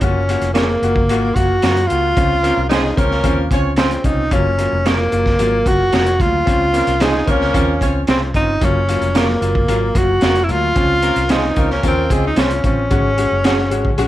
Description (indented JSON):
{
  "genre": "uptempo 1960s-style soul",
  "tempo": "112 BPM",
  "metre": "4/4",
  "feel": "straight",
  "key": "Db major",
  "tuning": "A4 = 440 Hz",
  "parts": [
    { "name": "breathy tenor saxophone", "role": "melody", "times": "0.0-14.1 s", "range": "Bb3 to Gb4", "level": "-18 LUFS", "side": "equal", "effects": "none" },
    { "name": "bright upright piano", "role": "accompaniment", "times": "0.0-14.1 s", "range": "Gb3 to Ab4", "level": "-22 LUFS", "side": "left 3 dB", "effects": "none" },
    { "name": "vintage muted fingered electric bass", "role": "bass", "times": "0.0-14.1 s", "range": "F1 to Gb2", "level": "-20 LUFS", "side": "equal", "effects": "none" },
    { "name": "crunchy breakbeat drum kit", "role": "drums", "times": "0.0-14.1 s", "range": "hi-hat, kick drum, snare drum", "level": "-19 LUFS", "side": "equal", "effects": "none" },
    { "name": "electric guitar through a small old amp", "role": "stabs", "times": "0.5-13.6 s", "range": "Ab3 to Db5", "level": "-25 LUFS", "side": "right 5 dB", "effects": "warbly pitch drift" },
    { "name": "warm horn section", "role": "second line", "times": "2.4-12.3 s", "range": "Ab3 to Db5", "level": "-24 LUFS", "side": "right 1 dB", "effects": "none" }
  ],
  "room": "light reverb",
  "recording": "vinyl crackle",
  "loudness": "-13 LUFS",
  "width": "side -14 dB against mid",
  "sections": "0.0-14.1 A section",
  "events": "none",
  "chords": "0.0 Gbmaj7; 2.2 Dbmaj7; 4.3 Gbmaj7; 6.5 Dbmaj7; 8.6 Gbmaj7; 10.8 Dbmaj7; 12.9 Ab7sus4"
}